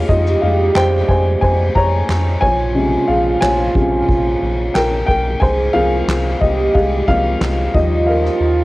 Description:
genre	piano-driven pop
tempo	90 BPM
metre	4/4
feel	straight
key	unclear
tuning	A4 = 440 Hz
part	dark upright piano	accompaniment	0.0-8.6 s	C3 to Bb5	-17 LUFS	left 1 dB	cassette tape
part	round analog bass	bass	0.0-8.6 s	Bb1 to F2	-19 LUFS	equal	none
part	dark French horn section	second line	0.1-8.6 s	F3 to Ab4	-20 LUFS	right 3 dB	cassette tape, tape echo
part	soft-mallet drum kit	drums	0.1-8.6 s	handclaps, hi-hat, kick drum, ride cymbal, snare drum	-21 LUFS	equal	none
room	light reverb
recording	home recording on cassette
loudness	-13 LUFS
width	side -19 dB against mid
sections	0.0-8.6 A section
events	upright piano solo 0.0-8.6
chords	0.1 Fm7; 2.4 Bbm7; 5.4 Ab6/C; 7.8 Ebadd9

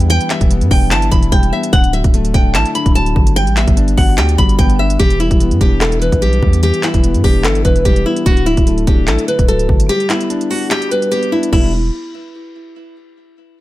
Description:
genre	hip hop, trap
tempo	147 BPM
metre	4/4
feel	half-time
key	E minor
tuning	A4 = 440 Hz
part	flamenco guitar	melody	0.0-11.7 s	E4 to B5	-17 LUFS	equal	none
part	dark concert grand piano	accompaniment	0.0-11.7 s	D3 to G4	-20 LUFS	left 4 dB	none
part	long sustained 808-style bass	bass	0.0-11.9 s	D1 to G2	-15 LUFS	equal	none
part	trap drum kit	drums	0.0-11.6 s	crash cymbal, handclaps, hi-hat, kick drum	-14 LUFS	equal	none
room	little or no reverb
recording	none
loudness	-11 LUFS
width	side -16 dB against mid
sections	0.0-5.0 A section; 5.0-11.5 B section; 11.5-13.2 C section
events	break 9.9-11.5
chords	0.0 Em7; 1.7 Dadd9; 3.4 Gmaj7; 5.0 Em7; 8.3 Dadd9; 9.9 Gmaj7; 11.5 Em7

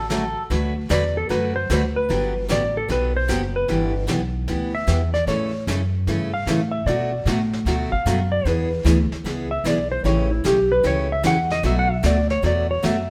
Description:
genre	country, western swing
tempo	151 BPM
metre	4/4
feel	swing 66% on 8ths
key	D major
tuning	A4 = 440 Hz
part	clean lap steel guitar	melody	0.0-13.1 s	E4 to F#5	-25 LUFS	equal	none
part	upright bass	bass	0.0-13.1 s	F#1 to B2	-26 LUFS	equal	none
part	picked steel-string acoustic guitar	accompaniment	0.1-13.0 s	B2 to B4	-27 LUFS	equal	none
part	vintage brush drum kit	drums	0.1-13.1 s	brushed snare drum, hi-hat, kick drum, snare drum	-34 LUFS	equal	none
room	moderate stone room reverb, RT60 1.2 s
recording	band playing live in one room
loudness	-21 LUFS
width	mono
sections	0.5-13.1 A section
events	electric slide guitar solo 0.5-13.1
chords	0.0 Dmaj7; 0.5 D6; 2.1 Gmaj7; 3.7 Em7; 5.3 A; 6.9 Bm7; 8.5 E7; 10.1 A7; 11.6 Bm7

